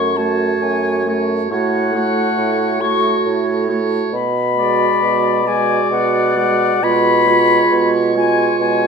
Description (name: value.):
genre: classical, slow romantic movement for wind quintet.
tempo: 68 BPM.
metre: 3/4.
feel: rubato.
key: F# minor.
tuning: A4 = 440 Hz.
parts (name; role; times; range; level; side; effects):
concert flute; melody; 0.0-8.9 s; F#5 to C#6; -18 LUFS; left 9 dB; none.
clear oboe; second line; 0.0-8.9 s; C#5 to D5; -22 LUFS; equal; none.
dark clarinet; accompaniment; 0.0-8.9 s; E#4 to F#4; -20 LUFS; right 8 dB; none.
mellow French horn; accompaniment; 0.0-8.9 s; G#3 to A3; -24 LUFS; equal; none.
warm bassoon; bass; 0.0-8.9 s; F#2 to B2; -20 LUFS; right 3 dB; none.
room: wet recital hall reverb, RT60 1.5 s.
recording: none.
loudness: -13 LUFS.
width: side -5 dB against mid.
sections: 0.0-8.9 A section.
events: none.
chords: 0.0 F#m; 1.5 F#m/A; 4.1 G#m7b5/B; 6.8 C#7/B.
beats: 0.63 | 1.52 2.40 3.27 | 4.15 5.03 5.91 | 6.83 7.72 8.60.